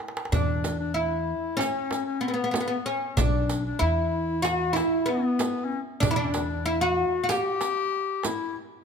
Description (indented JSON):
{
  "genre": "Turkish makam ensemble",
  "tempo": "189 BPM (eighths)",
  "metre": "9/8",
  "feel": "straight",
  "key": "E makam huseyni",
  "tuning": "A4 = 438 Hz",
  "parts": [
    { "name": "darbuka", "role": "percussion", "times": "0.0-8.6 s", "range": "none", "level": "-32 LUFS", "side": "right 4 dB", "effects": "none" },
    { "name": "oud", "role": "melody", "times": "0.3-8.5 s", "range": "B3 to G4", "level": "-27 LUFS", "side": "right 1 dB", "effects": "none" },
    { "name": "clear clarinet", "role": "second line", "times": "0.3-8.6 s", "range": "B3 to G4", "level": "-30 LUFS", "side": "left 7 dB", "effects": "none" },
    { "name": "upright bass", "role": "bass", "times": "0.3-7.0 s", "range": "B1 to E2", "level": "-29 LUFS", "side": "left 1 dB", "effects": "none" },
    { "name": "frame drum", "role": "percussion", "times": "0.3-8.4 s", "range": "none", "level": "-35 LUFS", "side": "right 4 dB", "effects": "none" },
    { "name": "riq", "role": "percussion", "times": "0.3-8.4 s", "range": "none", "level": "-37 LUFS", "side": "right 5 dB", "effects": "none" }
  ],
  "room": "moderate recital hall reverb, RT60 1.7 s",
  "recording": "close, detailed microphones",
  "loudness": "-24 LUFS",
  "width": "side -6 dB against mid",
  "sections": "0.3-8.8 A section",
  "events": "drum fill 0.0-0.3",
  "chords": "none"
}